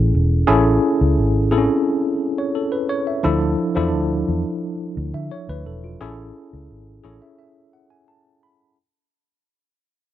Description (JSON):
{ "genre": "soul", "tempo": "87 BPM", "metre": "4/4", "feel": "straight", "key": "A major", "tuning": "A4 = 443 Hz", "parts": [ { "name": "tine electric piano", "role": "accompaniment", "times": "0.0-8.8 s", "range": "F3 to B5", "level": "-20 LUFS", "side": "left 1 dB", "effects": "medium stereo tremolo" }, { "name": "vintage muted fingered electric bass", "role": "bass", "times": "0.0-7.2 s", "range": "E1 to D3", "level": "-20 LUFS", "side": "equal", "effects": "none" } ], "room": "small room ambience", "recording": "dry, close 1970s-style studio recording", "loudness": "-17 LUFS", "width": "side -12 dB against mid", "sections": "0.0-8.8 A section", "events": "fade-out 0.0-8.8; tine electric piano fill 6.7-8.8", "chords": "0.0 Amaj7; 3.2 Dmadd9; 6.0 Amaj7", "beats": "| 0.48 1.17 1.86 2.55 | 3.24 3.93 4.62 5.31 | 6.00 6.69 7.38 8.07" }